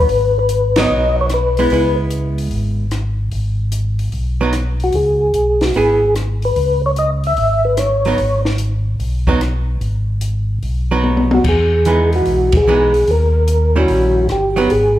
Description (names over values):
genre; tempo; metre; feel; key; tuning
soul jazz organ trio; 148 BPM; 4/4; swing 67% on 8ths; G# minor; A4 = 439 Hz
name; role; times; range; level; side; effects
percussive tonewheel organ; melody; 0.0-2.0, 4.8-8.4, 11.3-15.0 s; F#4 to E5; -15 LUFS; left 1 dB; slow rotary speaker, chorus vibrato
archtop guitar, miked and amplified; accompaniment; 0.0-14.7 s; D#3 to G#4; -20 LUFS; right 3 dB; none
mellow tonewheel organ; bass; 0.0-15.0 s; G1 to E2; -17 LUFS; equal; overdrive, chorus vibrato, slow rotary speaker
compact cocktail drum kit; drums; 0.1-14.8 s; crash cymbal, hi-hat, kick drum, ride cymbal, rim click, snare drum, toms; -21 LUFS; left 1 dB; none
room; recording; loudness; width
moderate recital hall reverb, RT60 1.5 s; recorded in a church or concert hall; -13 LUFS; side -13 dB against mid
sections
0.0-15.0 A section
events
band accent 0.7, 12.5; drum fill 11.0-11.4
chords
0.0 G#m7; 1.7 C#m7; 3.3 G#m; 4.9 C#7(no3); 8.2 G#m7; 11.4 Emaj7; 13.1 D#7b9